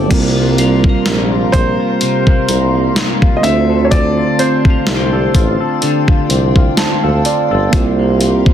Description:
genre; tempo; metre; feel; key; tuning
contemporary R&B; 63 BPM; 4/4; swing 54% on 16ths; unclear; A4 = 440 Hz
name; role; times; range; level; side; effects
mellow tine electric piano; accompaniment; 0.0-8.5 s; G3 to A5; -18 LUFS; right 7 dB; none
glassy FM pad; sustained chords; 0.0-8.5 s; F4 to C6; -22 LUFS; left 1 dB; ensemble chorus, built-in reverb
clean electric guitar; arpeggios; 0.0-8.5 s; C3 to A4; -20 LUFS; left 5 dB; analog chorus, digital delay
warm tuba; bass; 0.0-8.5 s; G1 to D2; -16 LUFS; equal; none
dusty soul sampler-style drum kit; drums; 0.1-8.5 s; crash cymbal, hi-hat, kick drum, snare drum; -14 LUFS; equal; none
glassy synth bell; texture; 0.6-7.0 s; C4 to Bb4; -26 LUFS; left 5 dB; chorus, digital delay
warm concert grand piano; melody; 1.5-6.3 s; C5 to E5; -18 LUFS; left 1 dB; digital delay
room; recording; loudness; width
little or no reverb; dense, heavily limited modern master; -11 LUFS; side -10 dB against mid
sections
0.1-8.5 A section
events
tine electric piano fill 6.3-7.7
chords
0.1 C7sus4; 3.4 Dm7; 7.7 C7sus4

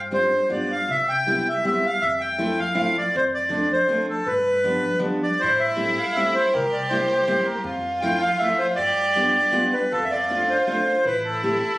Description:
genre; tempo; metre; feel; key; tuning
musette waltz; 160 BPM; 3/4; straight; C major; A4 = 444 Hz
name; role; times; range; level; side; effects
upright bass; bass; 0.0-11.5 s; A1 to A2; -37 LUFS; equal; none
accordion; melody; 0.1-11.8 s; A4 to G5; -20 LUFS; equal; none
fingerpicked steel-string acoustic guitar; accompaniment; 0.1-11.6 s; F3 to G4; -27 LUFS; equal; none
clear violin; second line; 5.4-11.8 s; E4 to G4; -27 LUFS; right 1 dB; none
room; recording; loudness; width
moderate recital hall reverb, RT60 1.5 s; recorded on a phone in the room, club reverb; -19 LUFS; side -19 dB against mid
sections
0.0-11.8 A section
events
none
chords
0.0 G7sus4; 0.5 G7; 0.9 Cmaj7; 2.0 Fmaj7; 3.1 Dm7/F; 4.3 G7; 5.4 Am7; 6.5 C7; 7.7 Fmaj7; 8.8 G7; 9.9 F6; 11.0 Am7

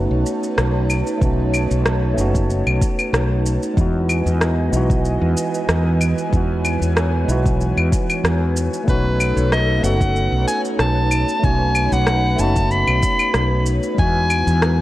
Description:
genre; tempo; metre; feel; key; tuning
sunset chillout; 94 BPM; 4/4; swing 54% on 16ths; E major; A4 = 445 Hz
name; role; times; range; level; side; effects
mellow tine electric piano; accompaniment; 0.0-14.8 s; G#3 to F#4; -24 LUFS; moving between left 3 dB and right 5 dB; auto-pan, ping-pong delay
airy breathy pad; sustained chords; 0.0-14.8 s; E3 to B5; -25 LUFS; equal; chorus
mellow fretless electric bass; bass; 0.0-14.8 s; F#1 to E2; -19 LUFS; equal; none
electronic shaker, rim click and claves; drums; 0.3-14.8 s; none; -23 LUFS; equal; overdrive
electronic kick drum; drums; 1.2-14.1 s; none; -20 LUFS; equal; overdrive
bright soprano saxophone; melody; 8.9-14.8 s; B4 to B5; -21 LUFS; equal; ping-pong delay
room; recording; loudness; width
light reverb, digital ambience; worn, warbling old tape, cassette tape, warbly pitch drift; -16 LUFS; side -15 dB against mid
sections
0.0-14.8 A section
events
none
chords
0.0 B9; 3.8 Emaj7; 8.9 B9; 14.0 Emaj7

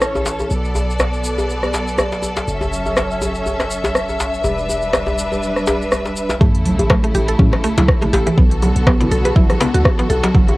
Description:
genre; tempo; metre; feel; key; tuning
afro house; 122 BPM; 4/4; swing 56% on 16ths; B minor; A4 = 440 Hz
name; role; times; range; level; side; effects
rich symphonic string section; sustained chords; 0.0-10.6 s; C#3 to E5; -22 LUFS; equal; sidechain pumping, cassette tape
warm 808-style bass; bass; 0.0-10.6 s; E1 to A2; -22 LUFS; equal; tube saturation, sidechain pumping
deep house drum kit; drums; 0.0-10.6 s; hi-hat, rim click; -19 LUFS; equal; cassette tape
tube shaker; percussion; 0.0-6.4 s; none; -31 LUFS; left 1 dB; none
djembe; percussion; 0.2-10.6 s; none; -23 LUFS; left 1 dB; none
mallet-like synth pluck; arpeggios; 6.4-10.5 s; E3 to B4; -20 LUFS; equal; chorus, sidechain pumping, cassette tape, tape echo
electronic kick drum; drums; 6.4-10.5 s; none; -14 LUFS; equal; overdrive, cassette tape
congas; percussion; 6.4-10.5 s; none; -22 LUFS; right 2 dB; none
sub drop; sound effects; 6.5-8.4 s; none; -27 LUFS; equal; none
room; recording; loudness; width
light reverb; home recording on cassette; -14 LUFS; side -20 dB against mid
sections
0.0-6.4 A section; 6.4-10.6 B section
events
drop 6.4-10.6; impact 6.4-8.4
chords
0.0 A; 0.5 Bm7; 2.5 F#m7; 4.4 Em7; 6.4 A; 8.4 Bm7

